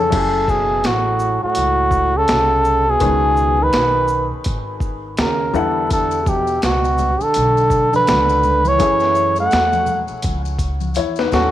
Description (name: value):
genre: hip hop, jazz-hop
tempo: 83 BPM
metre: 4/4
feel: swing 59% on 16ths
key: F# dorian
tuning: A4 = 441 Hz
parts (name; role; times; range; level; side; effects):
- trumpet with cup mute; melody; 0.0-11.5 s; F#4 to F#5; -16 LUFS; equal; tape echo
- breathy trombone; second line; 0.0-11.5 s; A2 to A3; -24 LUFS; right 7 dB; none
- clear upright piano; accompaniment; 0.0-11.5 s; D#3 to G#5; -25 LUFS; left 9 dB; none
- upright bass; bass; 0.0-11.5 s; F#1 to F#2; -22 LUFS; equal; none
- boom bap sampler-style drum kit; drums; 0.1-11.5 s; crash cymbal, hi-hat, kick drum, shaker, snare drum; -22 LUFS; equal; none
- maracas and congas; percussion; 5.9-11.5 s; none; -31 LUFS; left 6 dB; none
room: light reverb, studio ambience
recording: 1960s-style stereo with parts hard left and right, vinyl crackle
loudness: -14 LUFS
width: side -12 dB against mid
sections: 0.1-11.5 A section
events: drum fill 11.0-11.5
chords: 0.1 F#m9; 3.0 C#sus2; 5.5 Em9; 8.8 F#m9